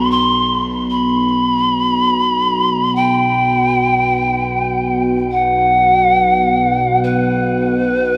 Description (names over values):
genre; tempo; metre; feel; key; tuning
world meditative, free-time meditation music; free time; none; none; unclear; A4 = 440 Hz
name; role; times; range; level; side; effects
breathy polished pan flute; melody; 0.0-8.2 s; B4 to C6; -17 LUFS; equal; shimmer reverb
deep dark ambient pad; drone; 0.0-8.2 s; B1 to B2; -20 LUFS; equal; chorus, built-in reverb
bronze singing bowl; texture; 0.0-3.8 s; none; barely audible; none; none
room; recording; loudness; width
wet huge ambient reverb, RT60 6.1 s; none; -15 LUFS; mono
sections
0.0-8.2 A section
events
none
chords
none